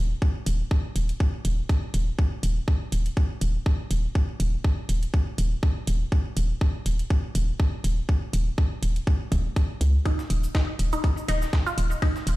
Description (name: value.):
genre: minimal techno.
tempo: 122 BPM.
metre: 4/4.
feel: swing 55% on 16ths.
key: unclear.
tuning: A4 = 440 Hz.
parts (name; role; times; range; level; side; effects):
hollow knocking FM bass; bass; 0.0-12.4 s; Eb1 to Db2; -24 LUFS; equal; sidechain pumping.
electronic kick drum; drums; 0.2-12.1 s; none; -22 LUFS; equal; overdrive.
electronic hi-hat and cabasa; drums; 0.5-12.4 s; none; -39 LUFS; right 2 dB; none.
resonant blip pluck; riff; 10.1-12.1 s; Eb4 to F4; -30 LUFS; equal; phaser, sidechain pumping, digital delay.
dusty soul sampler-style drum kit; drums; 10.1-12.4 s; hi-hat, snare drum; -40 LUFS; equal; overdrive, sidechain pumping on hats, high-pass filter on hats, high-pass filter on snare.
room: little or no reverb.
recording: played on a big sound system in a bare room, stone room reverb.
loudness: -23 LUFS.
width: side -18 dB against mid.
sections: 0.0-12.4 A section.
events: none.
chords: 0.0 Eb5.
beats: | 0.22 0.71 1.20 1.70 | 2.19 2.68 3.17 3.66 | 4.15 4.65 5.14 5.63 | 6.12 6.61 7.11 7.60 | 8.09 8.58 9.07 9.56 | 10.05 10.55 11.04 11.53 | 12.02.